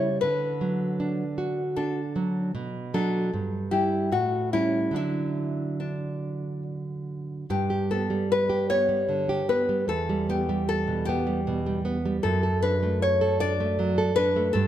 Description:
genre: romantic duo for nylon-string guitar and classical guitar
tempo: 70-80 BPM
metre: 3/4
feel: rubato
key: D major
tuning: A4 = 439 Hz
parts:
  - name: nylon-string guitar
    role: melody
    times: 0.0-14.7 s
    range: D4 to D5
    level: -27 LUFS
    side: left 2 dB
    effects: none
  - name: nylon-string guitar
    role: accompaniment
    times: 0.0-14.7 s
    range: E2 to A4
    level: -26 LUFS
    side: right 2 dB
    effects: none
room: moderate recital hall reverb, RT60 1.6 s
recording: none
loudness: -24 LUFS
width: side -11 dB against mid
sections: 0.0-7.5 A section; 7.5-14.7 B section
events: none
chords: 0.2 D; 2.5 Bm; 3.3 Em/G; 4.1 A6; 5.0 D; 7.5 G; 9.9 Em; 12.2 D/F#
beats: | 0.22 0.99 1.76 | 2.54 3.33 4.13 | 4.98 5.83 6.67 | 7.51 8.31 9.10 | 9.90 10.69 11.46 | 12.24 13.02 13.79 | 14.55

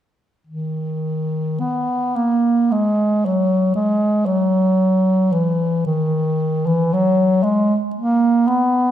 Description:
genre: classical, free, expressive piece for unaccompanied bass clarinet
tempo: 52-60 BPM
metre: 3/4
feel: rubato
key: unclear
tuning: A4 = 444 Hz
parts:
  - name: warm bass clarinet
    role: solo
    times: 0.5-8.9 s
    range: D#3 to B3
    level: -16 LUFS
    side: equal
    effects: none
room: wet scoring stage reverb, RT60 1.5 s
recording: minimal, uncompressed stereo recording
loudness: -16 LUFS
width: side -11 dB against mid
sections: 0.5-8.9 A section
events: none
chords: none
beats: | 0.47 1.61 2.72 | 3.77 4.80 5.86 | 6.91 7.94

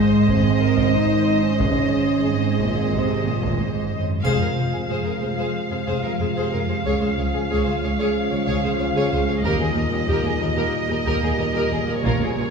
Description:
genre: cinematic, epic orchestral film score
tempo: 92 BPM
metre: 4/4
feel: straight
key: F minor from 4.3 s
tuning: A4 = 442 Hz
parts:
  - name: warm symphonic violin section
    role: melody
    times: 0.0-12.5 s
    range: Db5 to F5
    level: -28 LUFS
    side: equal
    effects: none
  - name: warm symphonic violin section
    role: second line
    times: 0.0-12.5 s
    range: G4 to Eb5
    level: -29 LUFS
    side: left 2 dB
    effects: none
  - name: warm studio viola section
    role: accompaniment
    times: 0.0-12.4 s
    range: F4 to C5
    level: -29 LUFS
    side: equal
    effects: none
  - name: mellow French horn section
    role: sustained chords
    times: 0.0-12.5 s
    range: Ab3 to F4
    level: -25 LUFS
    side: left 1 dB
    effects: none
  - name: warm studio cello section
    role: bass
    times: 0.0-12.4 s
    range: Db2 to C3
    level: -26 LUFS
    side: right 3 dB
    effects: none
  - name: warm symphonic double bass section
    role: bass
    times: 0.0-12.4 s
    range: F1 to Eb2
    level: -26 LUFS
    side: right 3 dB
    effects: none
  - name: taiko ensemble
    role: drums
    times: 0.3-12.5 s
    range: none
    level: -28 LUFS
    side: equal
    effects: none
  - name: triangle and cymbal swell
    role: percussion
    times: 4.2-5.5, 12.0-12.5 s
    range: none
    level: -46 LUFS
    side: right 1 dB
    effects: none
  - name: dark trombone section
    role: sustained chords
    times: 4.3-12.5 s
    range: Bb2 to G3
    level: -28 LUFS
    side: right 1 dB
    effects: none
  - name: cymbal swell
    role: sound effects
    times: 12.0-12.5 s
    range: none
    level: barely audible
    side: none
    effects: none
room: wet scoring stage reverb, RT60 2.0 s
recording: heard from further back in the room, small room ambience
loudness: -19 LUFS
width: side -5 dB against mid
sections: 0.0-4.3 A section; 4.3-12.5 B section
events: band accent 4.3-4.9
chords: 0.0 Ab; 4.3 Fm; 6.9 Db; 9.4 Eb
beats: 0.28 0.94 | 1.60 2.27 2.93 3.59 | 4.25 4.91 5.56 6.21 | 6.86 7.51 8.16 8.80 | 9.44 10.08 10.73 11.38 | 12.04

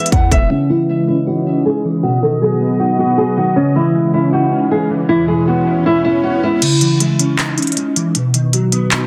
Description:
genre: hip hop, trap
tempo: 157 BPM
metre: 4/4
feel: half-time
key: C# minor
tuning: A4 = 445 Hz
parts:
  - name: nylon-string guitar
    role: melody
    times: 0.0-6.6 s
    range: C#4 to F#5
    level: -18 LUFS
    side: equal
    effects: low-pass filter, digital delay
  - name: mellow electric guitar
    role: accompaniment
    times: 0.0-9.1 s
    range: B2 to E5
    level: -19 LUFS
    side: equal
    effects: ensemble chorus, low-pass filter
  - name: sweeping resonant pad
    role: sustained chords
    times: 0.0-6.6 s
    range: E2 to E5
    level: -25 LUFS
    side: equal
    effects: chorus, phaser, low-pass filter
  - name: trap drum kit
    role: drums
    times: 0.0-0.4, 6.6-9.0 s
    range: crash cymbal, handclaps, hi-hat, kick drum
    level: -18 LUFS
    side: equal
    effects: none
  - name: warm 808-style bass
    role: bass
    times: 0.1-0.5 s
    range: E1 to E2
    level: -19 LUFS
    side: equal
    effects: none
  - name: swell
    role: sound effects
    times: 4.9-6.6 s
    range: none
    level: -29 LUFS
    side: equal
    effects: none
room: light reverb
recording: dense, heavily limited modern master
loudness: -15 LUFS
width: mono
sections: 0.5-6.6 A section; 6.6-9.1 B section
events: filter sweep 0.5-6.6; swell 4.9-6.6; kick muted 6.6-9.1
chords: 0.0 E; 0.5 C#madd9; 2.0 B; 3.6 C#madd9; 5.1 E; 6.6 C#madd9; 8.1 B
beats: 0.12 | 0.51 0.89 1.27 1.65 | 2.03 2.42 2.80 3.18 | 3.56 3.94 4.33 4.71 | 5.09 5.47 5.86 6.24 | 6.62 7.00 7.38 7.77 | 8.15 8.53 8.91

